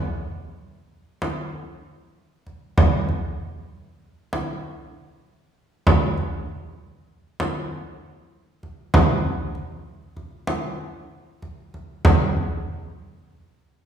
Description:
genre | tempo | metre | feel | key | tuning
contemporary instrumental, contemporary | 97 BPM | 5/4 | straight | none | none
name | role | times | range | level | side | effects
frame drum | percussion | 1.2-12.3 s | none | -20 LUFS | right 1 dB | none
room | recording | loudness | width
wet recital hall reverb, RT60 1.6 s | heard from further back in the room | -21 LUFS | side -8 dB against mid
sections
0.0-12.0 A section; 12.0-13.9 B section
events
none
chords
none

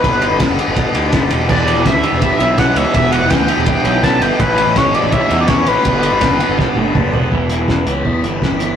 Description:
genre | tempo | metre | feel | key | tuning
indie rock | 165 BPM | 4/4 | straight | E dorian | A4 = 440 Hz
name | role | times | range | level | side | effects
sync lead | melody | 0.0-7.0 s | B4 to A5 | -17 LUFS | left 2 dB | chorus
brassy analog pad | sustained chords | 0.0-7.3 s | G4 to D6 | -31 LUFS | equal | none
cranked stack guitar | riff | 0.0-8.8 s | G2 to G4 | -20 LUFS | left 4 dB | overdrive, phaser
fuzz picked electric bass | bass | 0.0-8.8 s | E1 to E2 | -19 LUFS | equal | overdrive
cloth-damped thuddy drum kit | drums | 0.0-8.7 s | crash cymbal, hi-hat, kick drum, ride cymbal, snare drum, toms | -16 LUFS | equal | none
twelve-string electric guitar | riff | 1.5-8.8 s | G2 to G4 | -22 LUFS | right 8 dB | none
room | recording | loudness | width
moderate stone room reverb, RT60 0.9 s | rough rehearsal-room recording, tube saturation | -12 LUFS | side -8 dB against mid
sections
0.0-7.3 A section; 7.3-8.8 B section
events
drum fill 6.6-7.3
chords
0.0 Gmaj7; 1.5 Em7; 4.4 A7; 5.9 Gmaj7; 7.3 Em

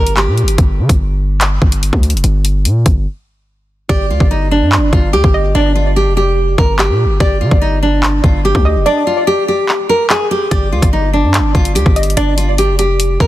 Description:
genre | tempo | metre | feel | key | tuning
hip hop, drill | 145 BPM | 4/4 | half-time | G minor | A4 = 440 Hz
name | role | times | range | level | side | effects
nylon-string guitar | melody | 0.0-0.6, 3.9-13.3 s | D4 to Bb4 | -15 LUFS | equal | digital delay
hard-hitting 808-style bass | bass | 0.0-13.3 s | F1 to D3 | -14 LUFS | equal | none
drill drum kit | drums | 0.1-13.3 s | handclaps, hi-hat, kick drum | -13 LUFS | equal | none
soft round pluck | second line | 3.9-12.6 s | D5 to Eb5 | -20 LUFS | equal | chorus, digital delay
room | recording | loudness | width
little or no reverb | dense, heavily limited modern master | -10 LUFS | side -15 dB against mid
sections
0.0-13.3 A section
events
break 3.1-3.9; hi-hats muted 3.9-10.5; kick muted 8.9-10.5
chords
0.0 G5

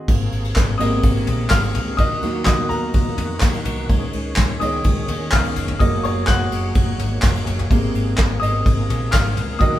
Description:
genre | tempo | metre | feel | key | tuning
piano-driven pop | 126 BPM | 4/4 | straight | Ab mixolydian | A4 = 439 Hz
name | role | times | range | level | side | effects
warm baby grand piano | accompaniment | 0.0-9.8 s | C3 to Gb6 | -22 LUFS | equal | none
tonewheel organ | sustained chords | 0.1-9.8 s | C3 to Ab4 | -30 LUFS | equal | overdrive, chorus vibrato, slow rotary speaker
vintage muted fingered electric bass | bass | 0.1-9.8 s | F1 to F2 | -24 LUFS | equal | none
soft brush drum kit | drums | 0.1-9.7 s | crash cymbal, handclaps, kick drum, ride cymbal, snare drum, toms | -19 LUFS | equal | none
room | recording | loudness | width
moderate stone room reverb, RT60 0.9 s | band playing live in one room | -17 LUFS | side -13 dB against mid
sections
0.1-9.8 A section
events
grand piano solo 0.1-9.8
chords
0.1 Abadd9; 2.0 Ebm; 3.9 Dbsus2; 5.8 Gbadd9; 7.7 Abadd9

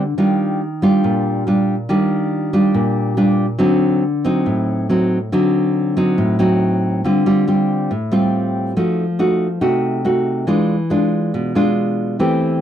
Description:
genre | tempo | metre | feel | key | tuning
bossa nova | 140 BPM | 4/4 | straight | unclear | A4 = 438 Hz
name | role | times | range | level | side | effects
nylon-string guitar | solo | 0.0-12.6 s | A2 to G4 | -15 LUFS | equal | none
room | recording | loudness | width
little or no reverb | dry, close 1970s-style studio recording | -15 LUFS | side -10 dB against mid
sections
0.0-7.0 A section; 7.0-12.6 B section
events
none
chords
0.2 Ebmaj9; 3.6 D7b9; 7.0 Dm7; 8.8 F7b9; 10.5 E7b9

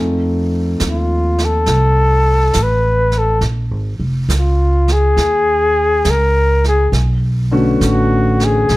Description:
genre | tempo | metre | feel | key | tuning
jazz ballad | 68 BPM | 4/4 | swing 67% on 8ths | unclear | A4 = 440 Hz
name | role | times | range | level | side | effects
warm concert grand piano | accompaniment | 0.0-8.7 s | D3 to A4 | -18 LUFS | left 1 dB | none
upright bass | bass | 0.0-8.8 s | F1 to F2 | -15 LUFS | right 1 dB | none
jazz brush drum kit | drums | 0.8-8.8 s | brushed snare drum, hi-hat, snare drum | -26 LUFS | right 3 dB | none
breathy flugelhorn | melody | 0.9-8.8 s | F4 to Cb5 | -15 LUFS | left 1 dB | none
room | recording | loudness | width
light reverb | none | -12 LUFS | side -18 dB against mid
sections
0.0-8.8 A section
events
flugelhorn solo 0.0-8.8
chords
0.0 F7; 3.4 Bbm7 (rootless); 6.9 Cbm9

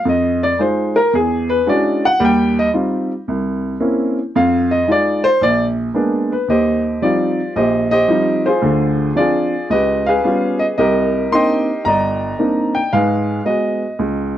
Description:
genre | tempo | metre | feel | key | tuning
solo jazz | 112 BPM | 4/4 | swing 67% on 8ths | Eb major | A4 = 441 Hz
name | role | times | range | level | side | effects
warm baby grand piano | solo | 0.0-14.4 s | G1 to C6 | -14 LUFS | equal | none
room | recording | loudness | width
light reverb | worn, warbling old tape, cassette tape, warbly pitch drift | -14 LUFS | side -11 dB against mid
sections
0.0-6.5 A section; 6.5-14.4 B section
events
grand piano solo 0.0-6.5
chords
0.1 Fm7; 1.1 E13; 2.2 Eb69; 3.3 C7b9; 4.3 Fm7; 5.4 Bb7b9; 6.5 Eb69; 8.6 Dm7b5; 9.7 Db7#11; 10.8 Cm9; 12.9 Abm7

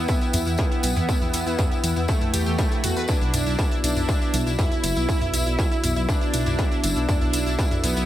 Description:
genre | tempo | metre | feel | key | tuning
melodic techno | 120 BPM | 4/4 | straight | E minor | A4 = 441 Hz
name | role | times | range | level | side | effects
soft supersaw | melody | 0.0-8.1 s | A3 to E4 | -28 LUFS | right 2 dB | sidechain pumping, dub echo
dark analog pad | sustained chords | 0.0-8.1 s | B3 to G5 | -33 LUFS | equal | chorus, sidechain pumping
analog pluck | arpeggios | 0.0-8.1 s | E4 to B5 | -30 LUFS | left 2 dB | chorus, sidechain pumping, dub echo
dark detuned saw bass | bass | 0.0-8.1 s | F#1 to E2 | -25 LUFS | equal | sidechain pumping
electronic kick drum | drums | 0.1-7.7 s | none | -23 LUFS | equal | distortion, overdrive, small room ambience
tambourine | percussion | 0.1-8.1 s | none | -33 LUFS | left 2 dB | none
techno drum kit | drums | 0.3-7.9 s | hi-hat, toms | -29 LUFS | right 1 dB | overdrive, small room ambience
room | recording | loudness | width
little or no reverb | echo-heavy mix | -20 LUFS | side -13 dB against mid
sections
0.0-8.1 A section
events
none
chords
0.0 Em; 3.1 Bm7

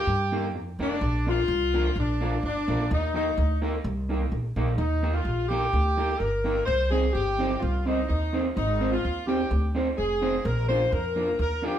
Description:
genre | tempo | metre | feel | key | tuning
ska | 127 BPM | 4/4 | straight | Eb major | A4 = 441 Hz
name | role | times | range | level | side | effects
warm horn section | melody | 0.0-11.8 s | D4 to C5 | -27 LUFS | left 1 dB | slapback echo
upright bass | bass | 0.1-11.8 s | F1 to G2 | -27 LUFS | equal | none
electric guitar at the edge of break-up | accompaniment | 0.3-11.8 s | Bb3 to C5 | -30 LUFS | right 2 dB | slapback echo
room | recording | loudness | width
moderate studio reverb, RT60 0.8 s | band playing live in one room | -23 LUFS | side -10 dB against mid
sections
0.0-4.8 A section; 4.8-11.8 B section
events
none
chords
0.0 Eb; 1.0 Bb; 2.9 Eb; 6.7 Cm; 8.6 Ab; 10.4 Bb

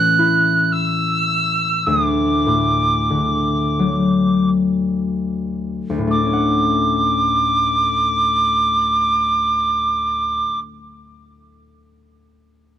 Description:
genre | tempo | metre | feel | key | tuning
celtic folk, Celtic slow air | 36-56 BPM | 3/4 | rubato | D major | A4 = 441 Hz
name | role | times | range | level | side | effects
reedy wooden whistle | melody | 0.0-10.6 s | D6 to F#6 | -17 LUFS | right 1 dB | none
concert harp | accompaniment | 0.0-10.8 s | D2 to F#5 | -19 LUFS | left 2 dB | none
room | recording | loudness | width
little or no reverb | dry, close 1970s-style studio recording | -15 LUFS | side -10 dB against mid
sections
0.0-6.1 A section; 6.1-10.9 B section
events
slowing down 0.0-6.1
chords
0.0 A; 1.8 D; 6.1 Dmaj7

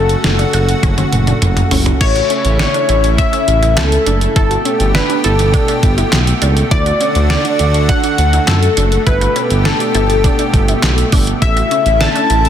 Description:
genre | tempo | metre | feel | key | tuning
synth-pop | 102 BPM | 4/4 | straight | unclear | A4 = 440 Hz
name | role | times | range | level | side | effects
funky polysynth comp | melody | 0.0-12.5 s | A4 to A5 | -16 LUFS | left 3 dB | chorus, ping-pong delay
lush unison pad | sustained chords | 0.0-12.5 s | B2 to G4 | -19 LUFS | right 1 dB | chorus
resonant blip pluck | arpeggios | 0.0-12.5 s | C#4 to F#4 | -23 LUFS | right 2 dB | phaser, ping-pong delay
smooth synth bass | bass | 0.0-12.5 s | F#1 to F#2 | -15 LUFS | equal | none
detuned 8-bit digital drum machine | drums | 0.1-12.5 s | crash cymbal, handclaps, hi-hat, kick drum, snare drum, toms | -16 LUFS | equal | none
room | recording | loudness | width
light reverb | dense, heavily limited modern master | -11 LUFS | side -9 dB against mid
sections
0.0-2.0 A section; 2.0-12.5 B section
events
drum fill 0.8-2.0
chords
0.0 F#m; 4.4 Gadd9; 6.7 D; 9.1 Gadd9; 11.4 A

